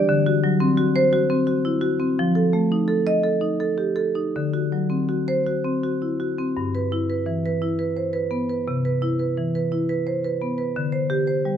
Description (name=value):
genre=classical, contemporary piece for solo marimba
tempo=57 BPM (dotted quarters)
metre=6/8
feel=straight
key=G major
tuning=A4 = 440 Hz
part: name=marimba with medium hard mallets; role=solo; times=0.0-11.6 s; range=G2 to Eb5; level=-20 LUFS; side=equal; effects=none
room=light reverb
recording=close, detailed microphones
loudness=-20 LUFS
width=side -9 dB against mid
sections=0.0-6.6 A section; 6.6-11.6 B section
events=none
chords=0.1 D7; 2.2 F7; 4.3 D7; 6.6 G6; 8.7 Cmaj7; 10.7 D7sus4